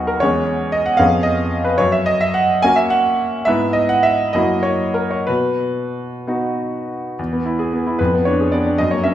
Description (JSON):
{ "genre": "classical, romantic character piece for solo piano", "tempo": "58-79 BPM (dotted quarters)", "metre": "6/8", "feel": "rubato", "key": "B major", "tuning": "A4 = 440 Hz", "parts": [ { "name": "bright concert grand piano", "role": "solo", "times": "0.0-9.1 s", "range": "D#2 to G#5", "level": "-15 LUFS", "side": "equal", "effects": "none" } ], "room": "wet recital hall reverb, RT60 1.4 s", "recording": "recorded in a church or concert hall", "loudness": "-15 LUFS", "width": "side -11 dB against mid", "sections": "0.0-7.2 A section; 7.2-9.1 B section", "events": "none", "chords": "0.2 C#m/E; 1.0 C#7/E#; 1.8 F#; 3.5 E/G#; 4.3 F#7; 5.3 B; 7.2 E; 8.0 Fdim7" }